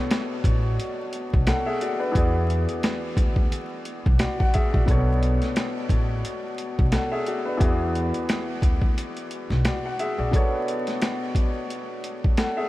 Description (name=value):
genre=hip hop, boom-bap hip-hop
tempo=88 BPM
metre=4/4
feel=swing 56% on 16ths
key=B dorian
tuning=A4 = 445 Hz
part: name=clear upright piano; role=accompaniment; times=0.0-12.7 s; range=B2 to F#5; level=-27 LUFS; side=left 1 dB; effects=high-pass filter, low-pass filter
part: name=boom bap sampler-style drum kit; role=drums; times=0.1-12.6 s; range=hi-hat, kick drum, snare drum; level=-24 LUFS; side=equal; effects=overdrive
part: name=upright bass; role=bass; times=0.4-10.3 s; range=A1 to E2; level=-25 LUFS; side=equal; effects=none
room=light reverb, small room ambience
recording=vinyl crackle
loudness=-21 LUFS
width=side -17 dB against mid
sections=0.0-10.3 A section; 10.3-12.7 A section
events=break 9.0-10.3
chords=0.0 Bm7; 2.2 E7; 4.9 Bm7; 7.6 E7; 10.3 Bm7